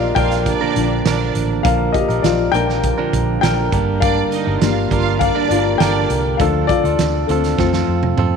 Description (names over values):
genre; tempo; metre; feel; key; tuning
piano-driven pop; 101 BPM; 4/4; straight; Bb major; A4 = 441 Hz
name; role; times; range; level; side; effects
warm studio violin section; second line; 0.0-6.2 s; D4 to F5; -24 LUFS; right 10 dB; none
dark baby grand piano; accompaniment; 0.0-8.4 s; F3 to G5; -19 LUFS; left 10 dB; none
direct-recorded clean electric guitar; riff; 0.0-8.4 s; G2 to Bb4; -21 LUFS; right 11 dB; none
vintage muted fingered electric bass; bass; 0.0-8.4 s; G1 to F2; -21 LUFS; equal; none
loose indie drum kit; drums; 0.2-8.3 s; hi-hat, kick drum, snare drum, toms; -22 LUFS; right 3 dB; none
room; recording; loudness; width
moderate echo chamber reverb, RT60 2.3 s; 1960s-style stereo with parts hard left and right; -14 LUFS; side -6 dB against mid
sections
0.0-8.4 A section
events
grand piano solo 0.0-8.4; drum fill 7.6-8.4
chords
0.0 Bb; 3.7 Gm; 6.4 Dm; 7.6 F